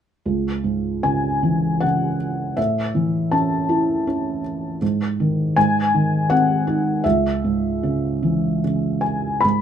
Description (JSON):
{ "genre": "classical, lyrical solo piano", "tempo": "72-82 BPM", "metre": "3/4", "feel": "rubato", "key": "C# minor", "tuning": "A4 = 441 Hz", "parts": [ { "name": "felt-muted upright piano", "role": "solo", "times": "0.3-9.6 s", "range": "C#2 to B5", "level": "-18 LUFS", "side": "equal", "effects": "none" } ], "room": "light reverb", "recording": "none", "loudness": "-18 LUFS", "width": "side -8 dB against mid", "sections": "0.3-9.4 A section", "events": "none", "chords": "0.3 C#m; 2.6 A; 4.8 G#5; 5.6 G#; 7.0 C#m" }